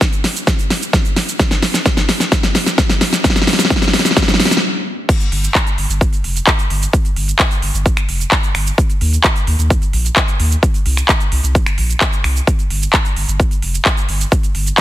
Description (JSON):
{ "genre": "EDM, festival progressive house", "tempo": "130 BPM", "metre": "4/4", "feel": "straight", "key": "unclear", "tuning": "A4 = 440 Hz", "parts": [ { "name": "big-room dance drum kit", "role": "drums", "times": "0.0-14.8 s", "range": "cabasa, crash cymbal, finger snaps, handclaps, hi-hat, snare drum", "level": "-16 LUFS", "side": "equal", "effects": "none" }, { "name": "electronic kick drum", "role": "drums", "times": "0.0-14.8 s", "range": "none", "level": "-15 LUFS", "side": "equal", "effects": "overdrive" }, { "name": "saturated sub bass", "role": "bass", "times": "5.3-14.7 s", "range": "F1 to Eb2", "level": "-17 LUFS", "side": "equal", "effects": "tube saturation, sidechain pumping" } ], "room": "light reverb, digital ambience", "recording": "none", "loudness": "-13 LUFS", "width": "side -14 dB against mid", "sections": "0.0-5.1 A section; 5.1-14.8 B section", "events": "build-up 0.0-5.1; drum fill 0.0-4.6; stop 4.6-5.1; drop 5.1-14.8", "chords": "none", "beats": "0.01 0.47 0.93 | 1.40 1.86 2.32 2.78 | 3.24 3.70 4.16 4.63 | 5.09 5.55 6.01 6.47 | 6.93 7.39 7.86 8.32 | 8.78 9.24 9.70 10.16 | 10.63 11.09 11.55 12.01 | 12.47 12.93 13.39 13.86 | 14.32 14.78" }